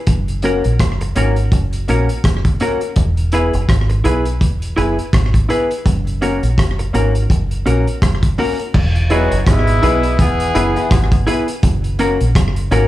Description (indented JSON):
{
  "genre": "roots reggae",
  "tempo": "83 BPM",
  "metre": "4/4",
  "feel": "swing 58% on 16ths",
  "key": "unclear",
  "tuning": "A4 = 439 Hz",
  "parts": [
    { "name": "deep dub fingered electric bass", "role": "bass", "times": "0.1-12.9 s", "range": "E1 to B1", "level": "-17 LUFS", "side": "equal", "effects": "none" },
    { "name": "crunchy breakbeat drum kit", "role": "drums", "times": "0.1-12.9 s", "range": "crash cymbal, hi-hat, kick drum, rim click", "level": "-17 LUFS", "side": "equal", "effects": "none" },
    { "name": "semi-hollow electric guitar", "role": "accompaniment", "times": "0.4-12.9 s", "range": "C#4 to B4", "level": "-22 LUFS", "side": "right 2 dB", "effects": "tape echo, slapback echo" },
    { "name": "clear baby grand piano", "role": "stabs", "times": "0.4-12.9 s", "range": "A#3 to B4", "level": "-21 LUFS", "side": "left 5 dB", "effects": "slapback echo" },
    { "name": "warm horn section", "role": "second line", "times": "9.1-11.2 s", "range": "B2 to G#4", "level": "-18 LUFS", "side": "equal", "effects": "tape echo, slapback echo" }
  ],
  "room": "little or no reverb",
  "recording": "live gig heard through the venue's PA, club reverb",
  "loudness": "-13 LUFS",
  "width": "side -15 dB against mid",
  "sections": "0.0-8.7 A section; 8.7-12.9 B section",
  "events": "none",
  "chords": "0.1 F#; 3.0 E; 5.9 F#; 8.7 E; 11.6 F#",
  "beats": "| 0.08 0.80 1.52 2.24 | 2.97 3.69 4.41 5.13 | 5.86 6.58 7.30 8.03 | 8.75 9.47 10.19 10.91 | 11.63 12.35"
}